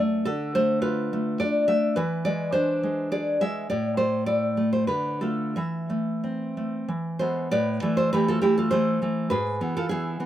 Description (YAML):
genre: romantic piece for solo classical guitar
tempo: 83-108 BPM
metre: 3/4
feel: rubato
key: A minor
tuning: A4 = 442 Hz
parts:
  - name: nylon-string guitar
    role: solo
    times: 0.0-10.3 s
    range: F#2 to E5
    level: -23 LUFS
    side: equal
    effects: slapback echo
room: light reverb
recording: recorded outdoors, with no room sound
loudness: -23 LUFS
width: side -12 dB against mid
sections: 0.0-7.5 A section; 7.5-10.3 B section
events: none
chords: 0.3 Bm7b5/D; 2.0 E7; 3.7 A5; 4.9 Dm; 5.6 Am/E; 6.9 E; 7.5 Am; 9.3 E/G#